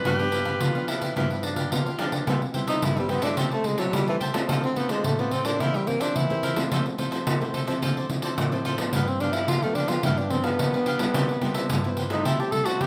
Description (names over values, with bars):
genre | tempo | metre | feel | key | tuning
samba and choro | 108 BPM | 4/4 | straight | C major | A4 = 439 Hz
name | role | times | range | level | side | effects
bright clarinet | melody | 0.0-1.7 s | B4 | -32 LUFS | equal | none
cavaquinho | accompaniment | 0.0-12.9 s | D4 to A5 | -35 LUFS | equal | none
nylon-string guitar | accompaniment | 0.0-12.9 s | G2 to G4 | -32 LUFS | equal | none
breathy tenor saxophone | second line | 0.1-12.9 s | E3 to A4 | -30 LUFS | equal | none
pandeiro | percussion | 0.1-12.9 s | none | -29 LUFS | equal | none
room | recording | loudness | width
moderate large studio reverb, RT60 1.2 s | close, detailed microphones | -25 LUFS | mono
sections
0.0-2.3 A section; 2.3-12.9 B section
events
tenor saxophone solo 2.3-12.9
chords
0.1 G7; 2.3 Cmaj7; 3.4 Am7/C; 4.5 Dm7; 5.6 C7/E; 6.7 Fmaj7; 7.8 Dm9; 8.9 G7; 11.2 Cmaj7; 12.3 Am7/C